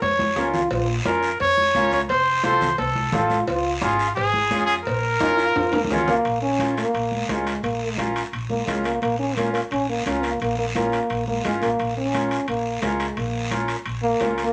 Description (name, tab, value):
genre	latin, cumbia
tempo	173 BPM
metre	4/4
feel	straight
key	Bb minor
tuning	A4 = 440 Hz
part	clear trumpet	melody	0.0-6.0 s	F4 to Db5	-23 LUFS	equal	none
part	upright bass	bass	0.0-14.5 s	F1 to F2	-33 LUFS	equal	none
part	congas	percussion	0.0-14.4 s	none	-32 LUFS	equal	none
part	cowbell and timbales	percussion	0.0-14.5 s	none	-33 LUFS	equal	none
part	guiro	percussion	0.0-14.5 s	none	-36 LUFS	equal	none
part	dark trombone	second line	0.4-1.0, 3.1-14.5 s	Ab3 to F4	-26 LUFS	equal	none
part	accordion	accompaniment	0.4-14.4 s	C4 to Bb4	-28 LUFS	equal	none
room	wet studio reverb, RT60 0.5 s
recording	none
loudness	-22 LUFS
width	mono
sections	0.0-6.3 A section; 6.3-14.5 B section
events	drum fill 0.0-0.7, 5.6-6.3; trombone solo 6.3-14.5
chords	0.0 Bbm; 2.1 F; 3.5 Db; 4.9 Bbm